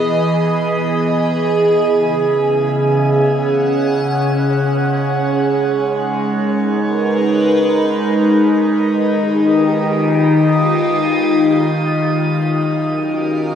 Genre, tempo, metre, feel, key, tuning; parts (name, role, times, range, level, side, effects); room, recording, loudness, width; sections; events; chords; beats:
ambient; free time; Db mixolydian; A4 = 440 Hz
evolving wavetable pad; solo; 0.0-13.6 s; Db3 to Gb5; -13 LUFS; equal; phaser, built-in reverb
wet shimmer reverb, RT60 8.9 s; -13 LUFS; side -8 dB against mid
0.0-1.9 A section; 1.9-13.6 B section
0.0 Emaj7; 1.9 Dbsus4; 5.4 Abmadd9; 8.9 Ebadd9; 12.4 Gbadd9
free time